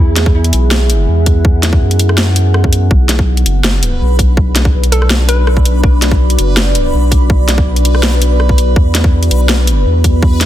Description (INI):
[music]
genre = half-time drum and bass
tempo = 164 BPM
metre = 4/4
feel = half-time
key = B dorian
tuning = A4 = 439 Hz
[part]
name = hollow square pluck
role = melody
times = 0.0-0.3, 4.9-5.7 s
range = E4 to B4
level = -22 LUFS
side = left 1 dB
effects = chorus, digital delay
[part]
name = deep dark ambient pad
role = sustained chords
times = 0.0-10.5 s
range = B3 to F#5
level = -19 LUFS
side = equal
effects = chorus, built-in reverb, sidechain pumping
[part]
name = saturated sub bass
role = bass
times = 0.0-10.5 s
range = F#1 to F#2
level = -11 LUFS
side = equal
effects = none
[part]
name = drum and bass drum kit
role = drums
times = 0.2-10.5 s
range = hi-hat, rim click, snare drum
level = -16 LUFS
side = equal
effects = overdrive
[part]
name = electronic kick drum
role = drums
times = 0.3-10.3 s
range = none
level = -11 LUFS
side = equal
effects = overdrive
[part]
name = backwards swelling texture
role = texture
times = 3.8-10.5 s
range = B4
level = -21 LUFS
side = equal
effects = built-in reverb
[sound]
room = light reverb, digital ambience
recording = dense, heavily limited modern master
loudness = -9 LUFS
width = side -12 dB against mid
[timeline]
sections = 0.0-10.5 A section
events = none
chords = 0.0 E; 2.9 Bm; 8.8 E